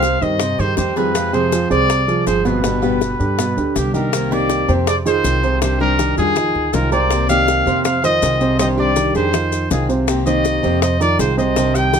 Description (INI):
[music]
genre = latin, Cuban son and guajira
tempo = 161 BPM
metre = 4/4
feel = straight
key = C minor from 4.1 s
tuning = A4 = 439 Hz
[part]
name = warm trumpet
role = melody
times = 0.0-12.0 s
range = G4 to G5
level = -19 LUFS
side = left 1 dB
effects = none
[part]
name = flamenco guitar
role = second line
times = 0.0-12.0 s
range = D4 to Eb5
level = -25 LUFS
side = right 7 dB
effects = none
[part]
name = picked steel-string acoustic guitar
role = accompaniment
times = 0.0-12.0 s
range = B2 to G4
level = -23 LUFS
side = left 6 dB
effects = none
[part]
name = dark grand piano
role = arpeggios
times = 0.0-12.0 s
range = B2 to C5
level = -21 LUFS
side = right 4 dB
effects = none
[part]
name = upright bass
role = bass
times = 0.0-12.0 s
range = G1 to G2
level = -21 LUFS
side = equal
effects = none
[part]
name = bongos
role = percussion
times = 0.0-12.0 s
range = none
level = -24 LUFS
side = left 11 dB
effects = none
[part]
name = maracas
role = percussion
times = 0.0-12.0 s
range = none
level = -30 LUFS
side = left 5 dB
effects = none
[sound]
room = light reverb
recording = close, detailed microphones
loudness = -14 LUFS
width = side -7 dB against mid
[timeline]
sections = 0.0-4.1 A section; 4.1-12.0 B section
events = none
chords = 0.0 Cm; 1.1 Fm; 2.6 G; 4.1 Cm11; 4.9 Fm7; 5.6 Cmadd9; 6.4 Fm7; 7.1 Cm11; 7.8 Fm7; 8.6 Cmadd9; 9.3 Fm7; 10.1 Cm7; 10.8 Fm7